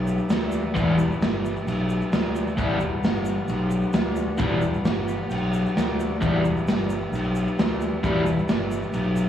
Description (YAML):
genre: garage rock duo or trio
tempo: 132 BPM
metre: 4/4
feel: straight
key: E minor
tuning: A4 = 436 Hz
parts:
  - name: overdriven combo organ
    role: sustained chords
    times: 0.0-9.3 s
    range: G4 to B5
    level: -32 LUFS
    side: left 1 dB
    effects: spring reverb
  - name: fuzz fingered electric bass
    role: bass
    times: 0.0-9.3 s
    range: E1 to D2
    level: -25 LUFS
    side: equal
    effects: overdrive
  - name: egg shaker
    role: percussion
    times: 0.1-9.3 s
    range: none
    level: -52 LUFS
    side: equal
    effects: none
  - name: raw garage drum kit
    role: drums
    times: 0.3-9.0 s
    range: crash cymbal, kick drum, snare drum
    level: -27 LUFS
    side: equal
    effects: none
  - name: crunchy overdriven guitar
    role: riff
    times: 0.7-8.2 s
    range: E2 to E4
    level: -24 LUFS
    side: left 1 dB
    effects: slapback echo
room: light reverb, small room ambience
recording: live gig heard through the venue's PA, cassette tape, recital hall reverb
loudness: -21 LUFS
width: side -10 dB against mid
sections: 0.0-9.3 A section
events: transistor combo organ fill 4.9-6.2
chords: 0.0 Em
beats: 0.30 | 0.76 1.22 1.67 2.13 | 2.58 3.04 3.49 3.95 | 4.40 4.86 5.31 5.77 | 6.22 6.67 7.13 7.58 | 8.03 8.48 8.94